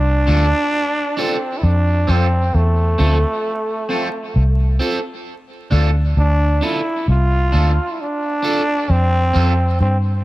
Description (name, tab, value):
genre	roots reggae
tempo	66 BPM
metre	4/4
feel	swing 56% on 16ths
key	D minor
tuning	A4 = 441 Hz
part	growling trombone	melody	0.0-10.0 s	A3 to F4	-20 LUFS	right 1 dB	tape echo
part	vintage muted fingered electric bass	bass	0.0-10.2 s	C2 to G2	-14 LUFS	equal	none
part	electric guitar at the edge of break-up	accompaniment	0.3-9.5 s	C4 to A4	-25 LUFS	right 2 dB	phaser, tape echo
room	light reverb, studio reverb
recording	echo-heavy mix, vinyl crackle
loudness	-15 LUFS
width	side -17 dB against mid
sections	0.0-10.2 A section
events	none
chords	0.0 Dm; 1.6 F; 5.3 Dm; 8.9 F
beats	0.72 | 1.63 2.54 3.44 4.35 | 5.25 6.16 7.07 7.98 | 8.88 9.79